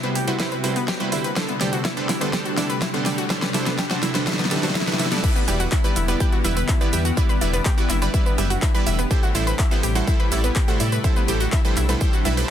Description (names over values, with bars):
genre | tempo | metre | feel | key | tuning
progressive house | 124 BPM | 4/4 | straight | E minor | A4 = 440 Hz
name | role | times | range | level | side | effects
evolving wavetable pad | sustained chords | 0.0-12.5 s | C3 to G4 | -28 LUFS | left 1 dB | chorus, built-in reverb, sidechain pumping
analog pluck | arpeggios | 0.0-12.4 s | B3 to B5 | -27 LUFS | left 1 dB | chorus, sidechain pumping, ping-pong delay
supersaw stab | stabs | 0.0-12.5 s | A2 to E5 | -26 LUFS | right 4 dB | sidechain pumping, ping-pong delay
big-room dance drum kit | drums | 0.0-12.5 s | crash cymbal, handclaps, hi-hat, shaker, snare drum | -27 LUFS | equal | none
riser and swell | sound effects | 0.5-5.2 s | none | -34 LUFS | right 1 dB | none
dark detuned saw bass | bass | 0.2-12.4 s | D1 to A2 | -25 LUFS | equal | tube saturation, sidechain pumping, high-pass filter
electronic kick drum | drums | 0.4-12.1 s | none | -20 LUFS | equal | high-pass filter on kick, high-pass filter on room
room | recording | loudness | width
digital ambience | dense, heavily limited modern master | -19 LUFS | side -10 dB against mid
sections
0.0-5.2 A section; 5.2-12.5 B section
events
build-up 0.0-5.2; drum fill 0.0-5.2; filter sweep on ambient pad 0.0-5.2; swell 4.3-5.2; drop 5.2-12.5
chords
0.0 Cmaj7; 1.4 D7sus4; 5.2 Em7; 9.1 Am7